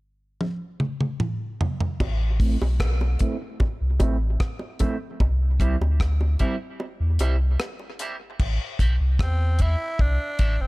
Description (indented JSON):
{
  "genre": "dub reggae",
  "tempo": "75 BPM",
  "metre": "4/4",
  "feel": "straight",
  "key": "A minor",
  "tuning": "A4 = 438 Hz",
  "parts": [
    { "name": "deep reggae drum kit", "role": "drums", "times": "0.4-10.6 s", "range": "crash cymbal, hi-hat, kick drum, rim click, toms", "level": "-24 LUFS", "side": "equal", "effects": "none" },
    { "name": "warm sub bass", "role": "bass", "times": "2.0-10.7 s", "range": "G1 to E2", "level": "-21 LUFS", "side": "equal", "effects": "none" },
    { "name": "bongos", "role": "percussion", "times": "2.0-8.2 s", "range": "none", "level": "-35 LUFS", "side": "right 2 dB", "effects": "high-pass filter on perc, tape echo" },
    { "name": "electric guitar at the edge of break-up", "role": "accompaniment", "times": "2.4-10.6 s", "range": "G3 to E4", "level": "-32 LUFS", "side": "right 3 dB", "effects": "lush chorus, high-pass filter, low-pass filter, tape echo" },
    { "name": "growling tenor saxophone", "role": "melody", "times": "9.2-10.7 s", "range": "C4 to E4", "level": "-29 LUFS", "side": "right 1 dB", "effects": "tape echo" }
  ],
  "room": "small room ambience",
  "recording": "faint mains hum",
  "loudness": "-21 LUFS",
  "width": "side -22 dB against mid",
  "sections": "0.0-2.0 A section; 2.0-8.4 B section; 8.4-10.7 C section",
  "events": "drum fill 0.4-2.0; filter sweep on clean electric guitar 2.0-8.4; filter sweep 5.2-10.7; break 6.8-8.4; part muted 8.4-10.7",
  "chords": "0.0 N.C.; 2.0 Am; 5.2 C; 8.4 Am"
}